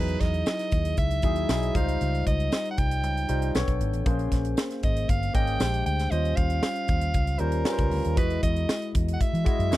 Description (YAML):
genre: polished 1980s jazz-funk pop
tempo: 117 BPM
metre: 4/4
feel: straight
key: unclear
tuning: A4 = 441 Hz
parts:
  - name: bright soprano saxophone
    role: melody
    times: 0.0-9.8 s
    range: Bb4 to G5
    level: -31 LUFS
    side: right 2 dB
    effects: none
  - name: barky tine electric piano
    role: accompaniment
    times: 0.0-9.8 s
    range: F#3 to Eb5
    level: -30 LUFS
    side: left 2 dB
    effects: overdrive, lush chorus
  - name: vintage muted fingered electric bass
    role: bass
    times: 0.0-9.8 s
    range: G1 to E3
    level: -27 LUFS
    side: equal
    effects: none
  - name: crisp fusion drum kit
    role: drums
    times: 0.1-9.8 s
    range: hi-hat, kick drum, snare drum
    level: -27 LUFS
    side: equal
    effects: none
  - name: tambourine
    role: percussion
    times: 0.5-9.8 s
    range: none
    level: -43 LUFS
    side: left 20 dB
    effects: none
room: little or no reverb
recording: dry, close 1970s-style studio recording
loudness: -23 LUFS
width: side -16 dB against mid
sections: 0.0-9.8 A section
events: none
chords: 0.0 Emaj9; 1.8 Dbmaj9#11; 3.5 Bm9; 4.1 Bbm9; 5.6 Bb13; 6.1 Eb13; 8.2 Emaj9